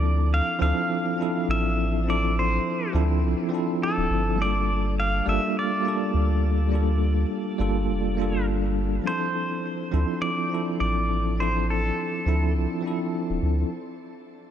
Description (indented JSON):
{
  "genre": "sunset chillout",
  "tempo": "103 BPM",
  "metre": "4/4",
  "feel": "swing 55% on 16ths",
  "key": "D minor",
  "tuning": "A4 = 438 Hz",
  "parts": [
    { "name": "pedal steel guitar", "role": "melody", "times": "0.0-12.5 s", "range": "A4 to F5", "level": "-29 LUFS", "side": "right 1 dB", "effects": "vintage 12-bit sampler grit, shimmer reverb, tape echo" },
    { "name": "bell-like tine electric piano", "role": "accompaniment", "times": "0.0-13.7 s", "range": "F3 to A4", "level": "-26 LUFS", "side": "moving between left 4 dB and right 3 dB", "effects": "fast stereo tremolo, auto-pan, shimmer reverb, ping-pong delay" },
    { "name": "round analog bass", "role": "bass", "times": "0.0-13.6 s", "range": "D1 to D2", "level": "-24 LUFS", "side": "equal", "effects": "none" }
  ],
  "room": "moderate plate reverb, RT60 3.1 s",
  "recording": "dark, warm production",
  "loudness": "-22 LUFS",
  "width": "side -9 dB against mid",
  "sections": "0.0-9.1 A section; 9.1-14.5 B section",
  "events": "none",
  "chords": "0.0 Dm9; 4.4 Gm9; 9.1 Dm9; 13.7 N.C."
}